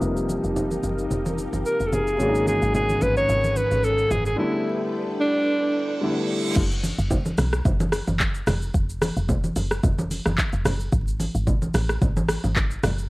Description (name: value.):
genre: amapiano.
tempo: 110 BPM.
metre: 4/4.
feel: swing 55% on 16ths.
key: unclear.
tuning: A4 = 440 Hz.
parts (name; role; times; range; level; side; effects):
clear baby grand piano; accompaniment; 0.0-6.6 s; C3 to E4; -26 LUFS; left 1 dB; low-pass filter, cassette tape.
string machine, violins; sustained chords; 0.0-6.5 s; C#4 to G5; -33 LUFS; equal; ensemble chorus, sidechain pumping, low-pass filter, cassette tape.
deep log drum bass; bass; 0.0-13.1 s; F1 to B1; -26 LUFS; equal; none.
afro-pop drum kit; drums; 0.0-13.1 s; crash cymbal, handclaps, hi-hat, kick drum, rim click, shaker; -25 LUFS; equal; overdrive, cassette tape.
congas; percussion; 0.3-13.0 s; none; -28 LUFS; right 1 dB; none.
breathy alto saxophone; melody; 1.7-6.3 s; D4 to C#5; -23 LUFS; equal; low-pass filter, cassette tape, tape echo.
fingered electric bass; bass; 2.2-4.3 s; G#1; -27 LUFS; equal; none.
reverse cymbal; sound effects; 5.7-6.6 s; none; -33 LUFS; right 5 dB; none.
room: light reverb, digital ambience.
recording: home recording on cassette, vinyl crackle.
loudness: -20 LUFS.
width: side -21 dB against mid.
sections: 0.0-6.6 A section; 6.6-13.1 B section.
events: filter sweep 0.0-6.6; break 4.4-6.6; reverse cymbal 5.7-6.6; drop 6.6-13.1.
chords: 0.0 F9sus4; 2.2 G#9sus4; 4.4 A9sus4; 6.6 F#sus4; 8.5 N.C..